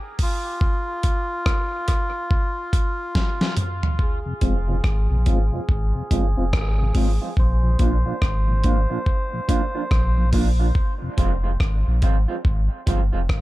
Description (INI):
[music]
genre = dub reggae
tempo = 71 BPM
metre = 4/4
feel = swing 62% on 16ths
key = F dorian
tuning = A4 = 440 Hz
[part]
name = melodica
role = melody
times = 0.2-10.3 s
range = F4 to C5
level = -30 LUFS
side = equal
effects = low-pass filter, dub echo
[part]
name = dusty soul sampler-style drum kit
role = drums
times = 0.2-13.4 s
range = hi-hat, kick drum, rim click, snare drum, toms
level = -22 LUFS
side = equal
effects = none
[part]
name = mellow tonewheel organ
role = accompaniment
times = 4.3-11.1 s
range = F2 to F4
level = -29 LUFS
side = left 2 dB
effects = chorus vibrato, low-pass filter
[part]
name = electric guitar through a small old amp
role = accompaniment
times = 4.4-13.2 s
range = F3 to F4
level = -29 LUFS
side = right 5 dB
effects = low-pass filter, dub echo
[part]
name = warm sub bass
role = bass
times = 4.4-13.4 s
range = F1 to Bb1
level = -20 LUFS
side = equal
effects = none
[sound]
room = little or no reverb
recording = echo-heavy mix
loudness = -19 LUFS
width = side -17 dB against mid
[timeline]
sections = 0.0-4.0 A section; 4.0-13.4 B section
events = break 0.0-4.0; drum fill 3.1-4.0; filter sweep 4.0-13.4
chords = 0.0 N.C.; 4.0 Fm; 7.4 Bb; 10.8 Fm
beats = | 0.61 1.46 2.30 3.15 | 3.99 4.83 5.68 6.53 | 7.37 8.21 9.06 9.91 | 10.75 11.60 12.44 13.29